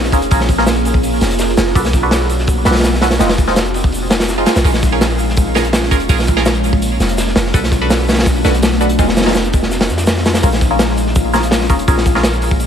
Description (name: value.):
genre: drum and bass, jungle.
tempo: 166 BPM.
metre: 4/4.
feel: straight.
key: Bb minor.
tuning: A4 = 439 Hz.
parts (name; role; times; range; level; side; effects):
ethereal airy pad; sustained chords; 0.0-12.7 s; Ab3 to Ab4; -19 LUFS; left 2 dB; ensemble chorus, built-in reverb, phaser, vintage 12-bit sampler grit.
long sustained 808-style bass; bass; 0.0-12.7 s; F1 to F2; -18 LUFS; equal; none.
crunchy breakbeat drum kit; drums; 0.0-12.7 s; hi-hat, kick drum, snare drum; -15 LUFS; equal; none.
band-passed chord stab; stabs; 0.1-12.2 s; Ab3 to B4; -20 LUFS; right 2 dB; phaser, dub echo.
crunchy breakbeat drum kit; drums; 0.1-12.7 s; hi-hat, shaker, snare drum; -27 LUFS; left 1 dB; high-pass filter on hats, high-pass filter on snare, high-pass filter on perc, high-pass filter on room.
room: light reverb, studio reverb.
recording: none.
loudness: -11 LUFS.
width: side -8 dB against mid.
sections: 0.0-12.7 A section.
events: none.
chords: 0.0 Bbm7; 1.8 Bm7; 3.2 Fm7; 4.6 Bbm7; 7.5 Bm7; 9.0 Fm7; 10.4 Bbm7.